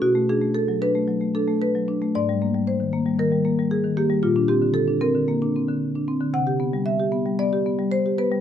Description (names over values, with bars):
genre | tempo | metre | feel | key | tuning
classical, contemporary piece for solo marimba | 114 BPM | 4/4 | rubato | unclear | A4 = 440 Hz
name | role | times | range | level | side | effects
marimba with medium mallets | solo | 0.0-8.4 s | G#2 to F#5 | -20 LUFS | left 1 dB | none
room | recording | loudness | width
light reverb | none | -20 LUFS | side -9 dB against mid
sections
0.0-8.4 A section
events
none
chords
0.0 Bm7; 2.1 G#maj9; 4.2 Bbadd9; 6.3 Cmaj7